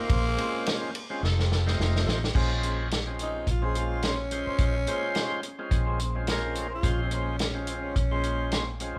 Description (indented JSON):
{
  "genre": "straight-eighth soul blues",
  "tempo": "107 BPM",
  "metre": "4/4",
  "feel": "swing 56% on 16ths",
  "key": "Bb minor",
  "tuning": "A4 = 441 Hz",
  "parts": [
    { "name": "growling tenor saxophone", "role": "melody", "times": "0.0-8.8 s", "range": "Bb3 to Bb4", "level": "-35 LUFS", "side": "equal", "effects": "none" },
    { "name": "tonewheel organ", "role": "accompaniment", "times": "0.0-9.0 s", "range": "Ab3 to C5", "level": "-36 LUFS", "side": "equal", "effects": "overdrive, slow rotary speaker" },
    { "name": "electric guitar through a small old amp", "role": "stabs", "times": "0.0-9.0 s", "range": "F2 to C5", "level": "-41 LUFS", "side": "equal", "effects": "none" },
    { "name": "mellow horn section", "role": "sustained chords", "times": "0.1-2.2 s", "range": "Eb4 to C5", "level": "-42 LUFS", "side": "equal", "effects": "none" },
    { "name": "vintage muted fingered electric bass", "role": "bass", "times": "0.1-9.0 s", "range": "F1 to Bb1", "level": "-31 LUFS", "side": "equal", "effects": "none" },
    { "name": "warm soul drum kit", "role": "drums", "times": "0.1-8.9 s", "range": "crash cymbal, hi-hat, kick drum, ride cymbal, snare drum", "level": "-31 LUFS", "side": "equal", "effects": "none" }
  ],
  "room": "light reverb",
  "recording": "band playing live in one room",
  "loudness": "-28 LUFS",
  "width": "mono",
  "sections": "0.0-2.3 A section; 2.3-9.0 B section",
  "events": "tenor saxophone solo 0.0-2.3; drum fill 1.2-2.3",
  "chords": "0.1 Bbm9; 1.2 F7; 2.3 Bbm9",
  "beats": "| 0.10 0.66 1.23 1.79 | 2.35 2.91 3.47 4.03 | 4.60 5.16 5.72 6.28 | 6.84 7.40 7.96 8.53"
}